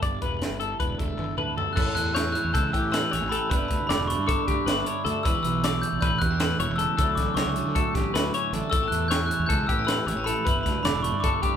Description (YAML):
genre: math rock and midwest emo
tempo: 310 BPM (eighths)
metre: 9/8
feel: straight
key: unclear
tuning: A4 = 440 Hz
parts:
  - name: twelve-string electric guitar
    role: accompaniment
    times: 0.0-11.6 s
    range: E2 to A4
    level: -31 LUFS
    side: right 6 dB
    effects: spring reverb
  - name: twelve-string electric guitar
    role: arpeggios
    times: 0.0-11.6 s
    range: G4 to D5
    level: -29 LUFS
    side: left 7 dB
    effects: warbly pitch drift
  - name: fuzz fingered electric bass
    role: bass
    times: 0.0-11.5 s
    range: E1 to D3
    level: -31 LUFS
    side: equal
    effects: overdrive
  - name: crisp fusion drum kit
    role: drums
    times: 0.0-11.5 s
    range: crash cymbal, hi-hat, kick drum, snare drum, toms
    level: -28 LUFS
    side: equal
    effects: none
  - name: glockenspiel with soft plastic mallets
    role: melody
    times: 1.7-11.6 s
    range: B5 to G6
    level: -28 LUFS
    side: left 1 dB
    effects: none
room: light reverb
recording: band playing live in one room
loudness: -22 LUFS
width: side -8 dB against mid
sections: 0.0-1.8 A section; 1.8-11.6 B section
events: drum fill 1.2-1.8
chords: 0.0 G69; 1.8 A7; 3.5 Em7; 7.0 Dmaj9; 8.7 A7; 10.5 Em7